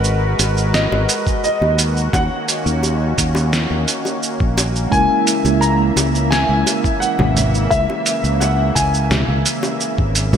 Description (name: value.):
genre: sunset chillout.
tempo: 86 BPM.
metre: 4/4.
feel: straight.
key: C# dorian.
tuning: A4 = 440 Hz.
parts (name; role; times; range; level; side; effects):
dark concert grand piano; melody; 0.0-9.4 s; D#5 to A#5; -21 LUFS; left 1 dB; lush chorus, ping-pong delay.
lush unison pad; sustained chords; 0.0-10.4 s; C#3 to E5; -23 LUFS; equal; chorus.
fretless electric bass; bass; 0.0-10.4 s; G#1 to D#2; -18 LUFS; equal; none.
dusty soul sampler-style drum kit; drums; 0.0-10.4 s; congas, hi-hat, shaker, snare drum; -20 LUFS; right 2 dB; gated reverb.
bongos; percussion; 0.4-10.4 s; none; -28 LUFS; left 2 dB; none.
electronic kick drum; drums; 1.3-10.1 s; none; -21 LUFS; equal; none.
mellow tine electric piano; accompaniment; 4.9-10.4 s; G#3 to A#4; -22 LUFS; moving between left 3 dB and right 5 dB; medium stereo tremolo, auto-pan.
room: moderate lush hall reverb, RT60 2.0 s.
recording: bright 1980s-style digital production.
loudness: -14 LUFS.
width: side -8 dB against mid.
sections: 0.0-10.4 A section.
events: none.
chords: 0.0 G#m9; 2.1 D#m7; 4.9 C#m6.